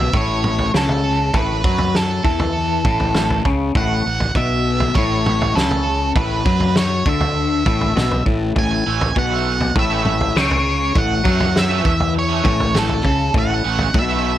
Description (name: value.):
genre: indie rock.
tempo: 100 BPM.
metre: 4/4.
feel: straight.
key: A major.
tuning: A4 = 438 Hz.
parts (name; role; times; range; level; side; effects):
octave-fuzz lead guitar; melody; 0.0-14.4 s; A4 to G#5; -21 LUFS; right 3 dB; distortion, slapback echo.
twangy electric guitar; riff; 0.0-14.4 s; A2 to F#3; -21 LUFS; left 4 dB; analog chorus.
fuzz fingered electric bass; bass; 0.0-14.4 s; A1 to F#2; -22 LUFS; right 1 dB; overdrive.
loose indie drum kit; drums; 0.1-14.1 s; kick drum, snare drum, toms; -20 LUFS; right 1 dB; none.
overdriven electric guitar; riff; 8.7-14.3 s; E3 to C#4; -26 LUFS; right 12 dB; analog chorus, slapback echo.
room: little or no reverb.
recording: none.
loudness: -15 LUFS.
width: side -12 dB against mid.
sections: 0.0-14.4 A section.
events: none.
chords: 0.0 A.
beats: 0.13 0.74 | 1.34 1.94 2.54 3.15 | 3.75 4.35 4.96 5.56 | 6.16 6.76 7.36 7.96 | 8.56 9.16 9.76 10.36 | 10.96 11.56 12.16 12.75 | 13.35 13.95.